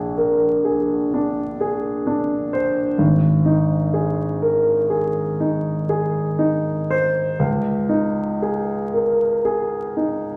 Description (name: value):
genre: classical, impressionist solo piano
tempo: 38-43 BPM (dotted quarters)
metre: 9/8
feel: rubato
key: unclear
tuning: A4 = 439 Hz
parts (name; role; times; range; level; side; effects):
- warm grand piano; solo; 0.0-10.4 s; Ab1 to C5; -20 LUFS; equal; none
room: wet recital hall reverb, RT60 1.3 s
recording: vinyl crackle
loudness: -20 LUFS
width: mono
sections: 0.0-10.4 A section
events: none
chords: 0.0 Bb9; 3.0 Ab5; 7.4 Dbsus2